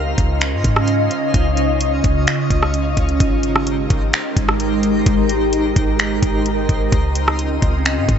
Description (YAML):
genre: hip hop, atmospheric cloud-rap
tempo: 129 BPM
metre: 4/4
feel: half-time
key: unclear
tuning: A4 = 438 Hz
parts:
  - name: glassy FM pad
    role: sustained chords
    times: 0.0-8.2 s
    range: Db3 to Eb5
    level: -19 LUFS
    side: equal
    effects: ensemble chorus, built-in reverb, phaser, sidechain pumping
  - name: clean 808-style bass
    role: bass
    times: 0.0-8.2 s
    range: Ab1 to Ab2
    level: -20 LUFS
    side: equal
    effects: none
  - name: twinkling granular texture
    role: texture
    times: 0.0-8.2 s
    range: Eb4 to C6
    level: -28 LUFS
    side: left 1 dB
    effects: built-in reverb
  - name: smooth R&B drum kit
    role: drums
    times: 0.2-8.2 s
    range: finger snaps, hi-hat, kick drum, rim click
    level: -19 LUFS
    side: equal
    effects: none
room: light reverb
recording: nothing above 7.9 kHz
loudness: -15 LUFS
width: side -8 dB against mid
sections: 0.0-8.2 A section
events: none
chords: 0.0 Dbmaj9; 3.2 Abmaj9; 6.9 Dbmaj9